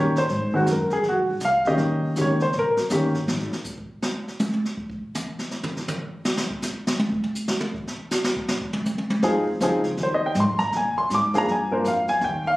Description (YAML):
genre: jazz piano trio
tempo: 161 BPM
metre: 4/4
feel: swing 63% on 8ths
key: unclear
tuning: A4 = 440 Hz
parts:
  - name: warm baby grand piano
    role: melody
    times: 0.0-3.1, 9.2-12.6 s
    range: Eb3 to D6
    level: -20 LUFS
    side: equal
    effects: none
  - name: upright bass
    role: bass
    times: 0.0-3.5, 9.2-12.6 s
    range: G1 to Bb2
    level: -28 LUFS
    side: equal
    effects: none
  - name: jazz brush drum kit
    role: drums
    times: 0.2-12.6 s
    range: brushed snare drum, hi-hat, kick drum, snare drum, toms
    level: -27 LUFS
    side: equal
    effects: none
room: moderate studio reverb, RT60 0.8 s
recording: recorded on a phone in the room, club reverb, compression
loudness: -21 LUFS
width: side -18 dB against mid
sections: 0.0-12.6 A section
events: grand piano solo 0.0-12.6; drum solo 3.3-9.2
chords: 0.3 Ab7; 1.8 Eb7; 3.3 N.C.; 9.2 Fm7; 10.7 Bb7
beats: | 0.30 0.68 1.05 1.42 | 1.80 2.17 2.54 2.91 | 3.29 3.66 4.03 4.41 | 4.78 5.15 5.52 5.90 | 6.27 6.64 7.01 7.39 | 7.76 8.13 8.50 8.88 | 9.25 9.62 9.99 10.36 | 10.73 11.11 11.48 11.85 | 12.22